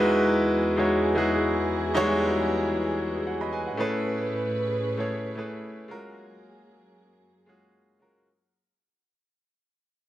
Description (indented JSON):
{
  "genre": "amapiano",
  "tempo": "114 BPM",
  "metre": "4/4",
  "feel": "swing 55% on 16ths",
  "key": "unclear",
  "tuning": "A4 = 440 Hz",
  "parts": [
    { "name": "bright grand piano", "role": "accompaniment", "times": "0.0-8.3 s", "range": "G3 to B5", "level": "-25 LUFS", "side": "equal", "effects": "none" },
    { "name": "dark studio string section", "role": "sustained chords", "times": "0.0-8.2 s", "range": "E2 to B4", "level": "-29 LUFS", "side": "equal", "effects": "none" }
  ],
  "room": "wet spring reverb, RT60 1.9 s, small room ambience",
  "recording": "echo-heavy mix",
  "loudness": "-23 LUFS",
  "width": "side -13 dB against mid",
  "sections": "0.0-8.3 A section",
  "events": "fade-out 0.0-8.3",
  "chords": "0.0 Emaj9; 3.8 Amaj9; 5.9 F#maj9",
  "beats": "0.36 0.89 1.42 | 1.94 2.47 3.00 3.52 | 4.05 4.58 5.10 5.63 | 6.15 6.68 7.21 7.73"
}